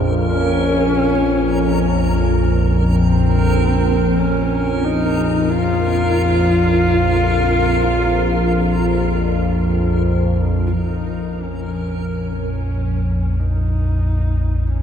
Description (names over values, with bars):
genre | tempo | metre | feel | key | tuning
dark ambient drone | free time | none | none | Bb minor | A4 = 439 Hz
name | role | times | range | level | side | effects
analog drone | drone | 0.0-14.8 s | Bb1 to F2 | -16 LUFS | equal | chorus, phaser
backwards swelling texture | texture | 0.0-10.8 s | Bb4 | -25 LUFS | right 2 dB | built-in reverb
dark horsehead fiddle | melody | 0.3-14.8 s | C4 to F4 | -21 LUFS | equal | ping-pong delay
room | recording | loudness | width
wet huge ambient reverb, RT60 8.0 s | none | -15 LUFS | side -8 dB against mid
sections
0.0-10.8 A section; 10.8-14.8 A section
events
filter sweep on synth drone 10.8-14.8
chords
0.0 Bbm